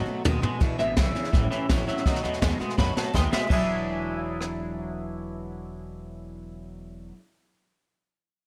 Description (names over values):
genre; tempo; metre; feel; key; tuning
rockabilly; 166 BPM; 4/4; straight; E mixolydian; A4 = 440 Hz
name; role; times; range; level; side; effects
electric guitar through a small old amp; melody; 0.0-7.1 s; D#5 to B5; -34 LUFS; equal; phaser, tape echo
picked steel-string acoustic guitar; accompaniment; 0.0-7.2 s; E2 to F#4; -36 LUFS; equal; none
twangy electric guitar; riff; 0.0-7.2 s; E2 to G#4; -35 LUFS; equal; analog chorus
upright bass; bass; 0.0-7.1 s; E1 to F#2; -34 LUFS; equal; none
jazz brush drum kit; drums; 0.3-4.5 s; crash cymbal, hi-hat, kick drum, rim click, snare drum, toms; -29 LUFS; equal; none
room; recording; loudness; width
light reverb, studio reverb; none; -26 LUFS; mono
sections
0.6-3.5 A section; 3.5-6.4 B section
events
drum fill 0.0-0.6, 2.8-3.5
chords
0.0 B7; 0.6 E7; 1.3 A7; 2.1 B7; 3.5 E9